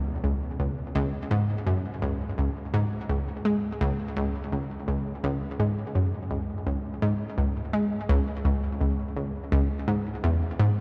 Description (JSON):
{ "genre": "ambient", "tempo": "84 BPM", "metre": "4/4", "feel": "straight", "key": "C# minor", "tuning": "A4 = 441 Hz", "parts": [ { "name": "analog pluck", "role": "solo", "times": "0.0-10.7 s", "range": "C#2 to G#3", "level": "-28 LUFS", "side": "equal", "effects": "chorus, delay" } ], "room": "wet cathedral reverb, RT60 6.5 s", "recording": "in a vast, echoing space", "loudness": "-28 LUFS", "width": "mono", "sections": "0.0-10.8 A section", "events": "none", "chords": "none" }